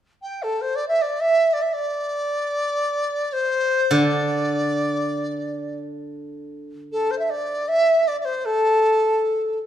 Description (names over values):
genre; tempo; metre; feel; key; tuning
chinese traditional, Chinese chamber ensemble; free time; none; none; D shang mode; A4 = 440 Hz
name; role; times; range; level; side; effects
mellow dizi; melody; 0.2-9.6 s; A4 to G5; -20 LUFS; equal; none
steel-string zither; accompaniment; 3.9-6.7 s; D3; -24 LUFS; equal; none
room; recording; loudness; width
wet recital hall reverb, RT60 1.4 s; minimal, uncompressed stereo recording; -19 LUFS; side -10 dB against mid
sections
0.0-6.9 A section; 6.9-9.7 B section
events
none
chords
none